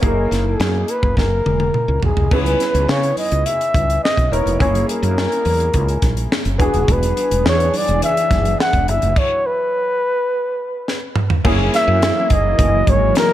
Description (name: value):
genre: polished 1980s jazz-funk pop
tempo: 105 BPM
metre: 4/4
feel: straight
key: unclear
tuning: A4 = 440 Hz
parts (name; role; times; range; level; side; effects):
- clear baby grand piano; accompaniment; 0.0-13.3 s; A#3 to A#4; -24 LUFS; equal; analog chorus
- woody fretless electric bass; bass; 0.0-13.1 s; D#1 to C#3; -19 LUFS; equal; wide subtle chorus
- tight funk drum kit; drums; 0.0-13.3 s; crash cymbal, hi-hat, kick drum, snare drum, toms; -20 LUFS; equal; gated reverb
- breathy flugelhorn; melody; 0.1-13.3 s; G#4 to F#5; -19 LUFS; left 1 dB; none
- congas; percussion; 2.3-13.3 s; none; -32 LUFS; right 5 dB; none
- soft string machine; sustained chords; 7.2-13.3 s; E3 to G#4; -25 LUFS; equal; ensemble chorus
room: light reverb, small room reverb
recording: none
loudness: -15 LUFS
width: side -13 dB against mid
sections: 0.0-2.3 A section; 2.3-11.4 B section; 11.4-13.3 C section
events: drum fill 1.2-2.3, 10.9-11.4; stop 9.2-11.4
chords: 0.0 F#13; 2.3 C#m9; 4.6 F#9; 6.6 E7; 8.9 F#7sus4; 11.4 F#13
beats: | 0.03 0.60 1.17 1.74 | 2.31 2.88 3.46 4.03 | 4.60 5.17 5.74 6.31 | 6.88 7.46 8.03 8.60 | 9.17 9.74 10.31 10.88 | 11.45 12.02 12.59 13.16